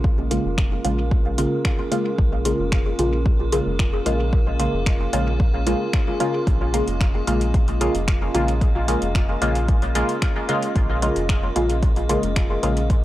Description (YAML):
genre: dub techno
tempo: 112 BPM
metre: 4/4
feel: straight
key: Bb minor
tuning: A4 = 441 Hz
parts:
  - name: dark analog pad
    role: sustained chords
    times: 0.0-13.0 s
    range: Db4 to Eb5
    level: -30 LUFS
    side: right 1 dB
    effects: lush chorus, sidechain pumping
  - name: round analog bass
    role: bass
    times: 0.0-13.0 s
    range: F1 to Bb1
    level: -24 LUFS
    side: equal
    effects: transformer saturation, sidechain pumping
  - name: electronic kick drum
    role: drums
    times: 0.0-13.0 s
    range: none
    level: -20 LUFS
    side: equal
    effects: overdrive
  - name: metallic inharmonic drone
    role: texture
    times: 0.0-13.0 s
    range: F4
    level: -34 LUFS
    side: left 2 dB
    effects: chorus, built-in reverb, phaser, sidechain pumping
  - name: filtered dub chord stab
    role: stabs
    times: 0.3-12.8 s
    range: Db3 to F4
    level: -23 LUFS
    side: equal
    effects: chorus, phaser, dub echo
  - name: deep house drum kit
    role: drums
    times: 0.3-13.0 s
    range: finger snaps, hi-hat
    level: -30 LUFS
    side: equal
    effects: overdrive, dub echo
room: little or no reverb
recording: dry, gritty hardware recording, transformer saturation, cassette tape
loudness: -18 LUFS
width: side -15 dB against mid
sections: 0.0-13.0 A section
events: none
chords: 0.0 Bbm7